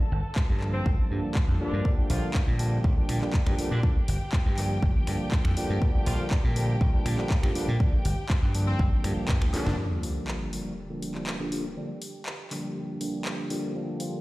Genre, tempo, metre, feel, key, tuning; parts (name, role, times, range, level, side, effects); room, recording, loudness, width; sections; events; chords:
filtered disco house; 121 BPM; 4/4; straight; Bb major; A4 = 440 Hz
muted symphonic violin section; sustained chords; 0.0-14.2 s; G4 to A5; -40 LUFS; equal; sidechain pumping, low-pass filter
dry thumbed slap bass; bass; 0.0-9.7 s; F1 to Bb2; -27 LUFS; equal; sidechain pumping, low-pass filter
electronic kick drum; drums; 0.4-9.4 s; -24 LUFS; equal; overdrive
house drum kit; drums; 0.4-14.1 s; finger snaps, handclaps, hi-hat, snare drum; -36 LUFS; equal; overdrive, sidechain pumping on hats
overdriven tine electric piano; accompaniment; 0.6-14.2 s; D3 to D4; -32 LUFS; equal; phaser, sidechain pumping, low-pass filter
bright horn section; melody; 0.7-14.2 s; D3 to F4; -39 LUFS; equal; sidechain pumping, low-pass filter, dub echo
sub drop; sound effects; 9.8-11.8 s; -35 LUFS; equal
light reverb, digital ambience; played on a big sound system in a bare room, stone room reverb; -24 LUFS; side -19 dB against mid
0.0-9.8 A section; 9.8-14.2 B section
drum fill 9.5; band accent 9.7; impact 9.8-11.8; filter sweep 9.8-14.2
0.0 Gm7; 1.9 Bb6; 3.8 Gm7; 5.8 Bb6; 7.8 Gm7; 9.8 Bb6